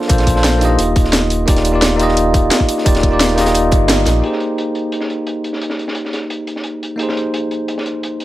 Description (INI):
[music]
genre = liquid drum and bass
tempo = 174 BPM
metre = 4/4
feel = straight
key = Ab lydian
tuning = A4 = 440 Hz
[part]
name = bell-like tine electric piano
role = accompaniment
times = 0.0-8.2 s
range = Bb3 to Eb5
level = -16 LUFS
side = equal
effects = medium stereo tremolo, tape echo
[part]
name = crunchy breakbeat drum kit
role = drums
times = 0.0-8.2 s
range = hi-hat, snare drum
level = -24 LUFS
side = equal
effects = high-pass filter on hats, low-pass filter on hats, high-pass filter on snare, low-pass filter on snare, high-pass filter on room, low-pass filter on room
[part]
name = sub bass with octave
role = bass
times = 0.1-4.2 s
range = Eb1 to Bb1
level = -18 LUFS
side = equal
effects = none
[part]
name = drum and bass drum kit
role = drums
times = 0.1-4.1 s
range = hi-hat, snare drum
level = -17 LUFS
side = equal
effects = none
[part]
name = electronic kick drum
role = drums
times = 0.1-3.8 s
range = none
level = -14 LUFS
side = equal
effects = none
[sound]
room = light reverb, small room ambience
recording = none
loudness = -13 LUFS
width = side -15 dB against mid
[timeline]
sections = 0.0-4.2 A section; 4.2-8.2 B section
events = filter sweep on tine electric piano 0.0-4.2; band accent 3.9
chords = 0.0 Bbmaj9; 0.8 Ebmaj9; 4.2 Abmaj9